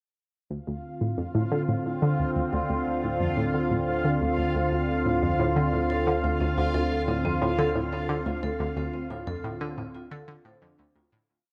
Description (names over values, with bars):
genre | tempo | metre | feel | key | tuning
ambient, sequencer-driven space music | 89 BPM | 4/4 | straight | D minor | A4 = 440 Hz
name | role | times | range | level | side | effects
sweeping resonant pad | sustained chords | 0.5-11.3 s | D3 to F4 | -30 LUFS | equal | chorus
analog pluck | riff | 0.5-11.2 s | D2 to D3 | -31 LUFS | equal | chorus, delay
round analog bass | bass | 0.5-11.3 s | D2 | -37 LUFS | equal | none
bubbling stepped-filter texture | texture | 0.5-11.3 s | F4 to F5 | -37 LUFS | equal | chorus, built-in reverb
vibraphone with medium mallets | arpeggios | 5.9-11.0 s | C4 to C5 | -36 LUFS | equal | delay
room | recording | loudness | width
moderate plate reverb, RT60 3.1 s | none | -27 LUFS | mono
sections
0.5-11.3 A section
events
filter sweep on synth arpeggio sound 0.5-11.3; fade-out 7.7-11.3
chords
0.5 Dm7